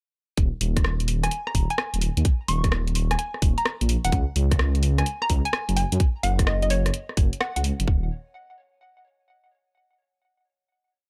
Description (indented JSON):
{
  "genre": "UK garage, two-step garage",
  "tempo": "128 BPM",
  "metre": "4/4",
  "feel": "swing 67% on 16ths",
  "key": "Eb minor",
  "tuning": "A4 = 440 Hz",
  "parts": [
    { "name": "dark detuned saw bass", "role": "bass", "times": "0.4-8.1 s", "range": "Eb1 to Gb2", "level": "-26 LUFS", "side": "equal", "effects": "none" },
    { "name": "electronic kick drum", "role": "drums", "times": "0.4-8.0 s", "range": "none", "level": "-24 LUFS", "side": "equal", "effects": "none" },
    { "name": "garage drum kit", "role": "drums", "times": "0.4-7.9 s", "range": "hi-hat, rim click", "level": "-31 LUFS", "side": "equal", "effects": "none" },
    { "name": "hollow square pluck", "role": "melody", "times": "1.2-7.6 s", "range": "Db5 to Db6", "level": "-31 LUFS", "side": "equal", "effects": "chorus, tape echo" }
  ],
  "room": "digital ambience",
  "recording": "none",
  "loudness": "-24 LUFS",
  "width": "mono",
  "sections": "0.4-7.9 drop; 7.9-9.8 final chord",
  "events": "drop 0.4-7.9",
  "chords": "0.4 Eb5; 4.1 Gb5; 7.9 N.C.",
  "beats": "| 0.38 0.84 1.31 1.78 | 2.25 2.72 3.19 3.66 | 4.12 4.59 5.06 5.53 | 6.00 6.47 6.94 7.41 | 7.88"
}